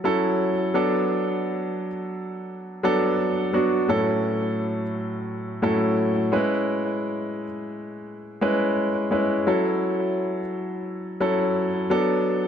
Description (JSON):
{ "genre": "pop", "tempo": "86 BPM", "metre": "4/4", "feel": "straight", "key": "F# minor", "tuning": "A4 = 441 Hz", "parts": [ { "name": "clear baby grand piano", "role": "solo", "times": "0.0-12.5 s", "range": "A2 to B4", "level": "-22 LUFS", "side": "equal", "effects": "tape echo" } ], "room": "moderate lush hall reverb, RT60 2.7 s", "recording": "none", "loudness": "-22 LUFS", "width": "side -8 dB against mid", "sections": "0.0-12.5 A section", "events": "none", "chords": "0.0 F#m7; 0.7 Bm7; 3.9 F#m7/A; 6.3 C#m7/G#; 9.5 F#m7; 11.9 Bm7" }